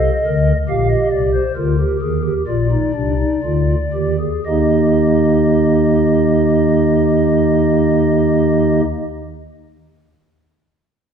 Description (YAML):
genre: classical, baroque-style 3-part fugue for pipe organ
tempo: 56-73 BPM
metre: 4/4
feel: straight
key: Eb major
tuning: A4 = 440 Hz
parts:
  - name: pipe organ, stopped flute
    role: solo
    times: 0.0-8.8 s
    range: Bb1 to F5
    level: -13 LUFS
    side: equal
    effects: none
room: wet scoring stage reverb, RT60 1.6 s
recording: minimal, uncompressed stereo recording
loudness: -13 LUFS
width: side -7 dB against mid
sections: 0.0-4.5 A section; 4.5-8.7 B section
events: slowing down 0.0-4.5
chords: 0.0 Adim; 0.7 Bb; 4.5 Eb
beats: | 0.68 1.55 2.46 3.42 | 4.46 5.51 6.57 7.62